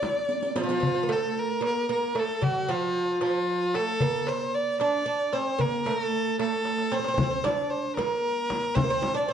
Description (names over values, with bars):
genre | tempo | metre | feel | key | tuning
Arabic maqam ensemble | 76 BPM (dotted quarters) | 6/8 | straight | D maqam huzam | A4 = 436 Hz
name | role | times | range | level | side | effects
rich violin | melody | 0.0-9.3 s | F4+49c to D5 | -27 LUFS | equal | none
darbuka | percussion | 0.0-9.3 s | none | -33 LUFS | left 3 dB | none
frame drum | percussion | 0.0-0.2, 7.2-9.1 s | none | -33 LUFS | left 2 dB | none
riq | percussion | 0.0-0.8 s | none | -34 LUFS | right 2 dB | none
oud | second line | 0.6-9.3 s | F#3-50c to D4 | -29 LUFS | right 4 dB | none
room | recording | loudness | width
moderate recital hall reverb, RT60 1.4 s | dark, warm production, nothing above 10.4 kHz | -24 LUFS | side -8 dB against mid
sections
0.8-9.3 A section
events
drum fill 0.3-0.8, 6.6-7.2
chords
none